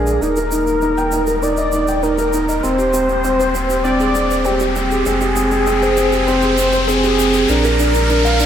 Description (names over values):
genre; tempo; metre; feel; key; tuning
piano and strings electronica; 99 BPM; 4/4; straight; Eb major; A4 = 439 Hz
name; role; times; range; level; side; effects
warm velvety synth lead; melody; 0.0-8.5 s; G4 to D5; -18 LUFS; equal; chorus, shimmer reverb
felt-muted upright piano; riff; 0.0-8.5 s; C4 to G5; -18 LUFS; equal; shimmer reverb, digital delay
warm sub bass; bass; 0.0-8.5 s; Eb1 to Bb1; -22 LUFS; equal; none
riser; sound effects; 0.0-8.5 s; none; -23 LUFS; left 1 dB; none
shaker; drums; 0.1-8.5 s; none; -31 LUFS; right 3 dB; none
room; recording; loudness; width
wet lush hall reverb, RT60 1.9 s, studio ambience; none; -14 LUFS; side -9 dB against mid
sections
0.0-8.5 A section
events
build-up 0.0-8.5; riser 0.0-8.5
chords
0.2 Eb; 2.6 Abmaj7/Eb; 5.1 Fmadd9; 7.5 Bb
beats
| 0.22 0.82 1.43 2.03 | 2.64 3.25 3.85 4.46 | 5.07 5.67 6.28 6.88 | 7.49 8.10